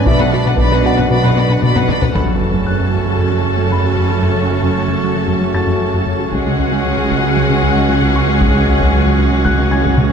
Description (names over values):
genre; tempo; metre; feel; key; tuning
cinematic, hybrid orchestral and electronic film score; 115 BPM; 4/4; straight; F# minor; A4 = 440 Hz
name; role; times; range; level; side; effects
warm symphonic violin section; melody; 0.0-2.2 s; F#5 to B5; -22 LUFS; left 6 dB; none
rich symphonic violin section; second line; 0.0-10.1 s; G#4 to A5; -21 LUFS; left 4 dB; none
warm symphonic viola section; accompaniment; 0.0-10.1 s; C#4 to B4; -23 LUFS; right 2 dB; none
bright trombone section; sustained chords; 0.0-10.1 s; F#2 to D4; -25 LUFS; right 4 dB; none
mellow French horn section; sustained chords; 0.0-10.1 s; C#4 to F#4; -27 LUFS; left 6 dB; none
metallic inharmonic drone; sustained chords; 0.0-10.1 s; F#3 to C#5; -23 LUFS; left 1 dB; chorus, built-in reverb
dark baby grand piano; texture; 0.0-10.1 s; F#4 to A6; -26 LUFS; left 3 dB; tape echo
harp-like synth pluck; arpeggios; 0.1-10.1 s; C#3 to B4; -25 LUFS; right 2 dB; none
plucky analog bass; riff; 0.1-10.1 s; C#2 to B3; -21 LUFS; left 3 dB; none
warm studio double bass section; bass; 0.1-10.1 s; F#1 to C#2; -19 LUFS; right 3 dB; none
warm symphonic cello section; bass; 0.1-10.1 s; C#2 to B2; -20 LUFS; right 4 dB; none
taiko ensemble; drums; 0.1-3.2, 6.3-10.1 s; none; -20 LUFS; left 1 dB; none
impact; sound effects; 2.2-4.2 s; none; -23 LUFS; left 1 dB; none
room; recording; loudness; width
moderate concert hall reverb, RT60 2.3 s; none; -12 LUFS; side -7 dB against mid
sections
0.0-2.2 A section; 2.2-10.1 B section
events
drum fill 1.6-2.2; impact 2.2-4.2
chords
0.1 Bm; 2.2 F#m; 6.3 C#sus4